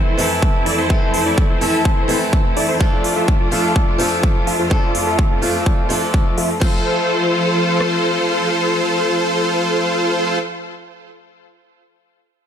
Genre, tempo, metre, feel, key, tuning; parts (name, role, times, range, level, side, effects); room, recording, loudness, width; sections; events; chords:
EDM, festival progressive house; 126 BPM; 4/4; straight; F major; A4 = 435 Hz
picked swing-style acoustic guitar; accompaniment; 0.0-10.4 s; E3 to A4; -23 LUFS; equal; sidechain pumping, ping-pong delay
bright studio string section; sustained chords; 0.0-10.4 s; F2 to C5; -23 LUFS; left 2 dB; sidechain pumping
dense compressed supersaw; riff; 0.0-10.4 s; E4 to F5; -19 LUFS; equal; sidechain pumping, low-pass filter, ping-pong delay
big-room dance drum kit; drums; 0.2-6.7 s; crash cymbal, hi-hat; -26 LUFS; equal
big-room dance drum kit; drums; 0.4-7.9 s; kick drum, rim click; -16 LUFS; equal
light reverb, digital ambience; -14 LUFS; side -8 dB against mid
0.0-6.6 A section; 6.6-10.4 B section
filter sweep on supersaw synth 0.0-6.6
0.0 Am/F; 6.6 F